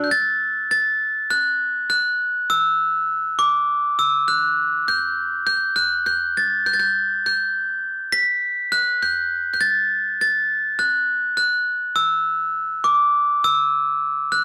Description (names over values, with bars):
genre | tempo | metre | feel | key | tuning
folk | 101 BPM | 4/4 | straight | unclear | A4 = 437 Hz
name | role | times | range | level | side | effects
glockenspiel with brass mallets | melody | 0.0-14.4 s | D6 to B6 | -20 LUFS | equal | slapback echo
room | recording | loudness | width
light reverb | dry, close 1970s-style studio recording | -20 LUFS | mono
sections
0.1-14.4 A section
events
none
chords
none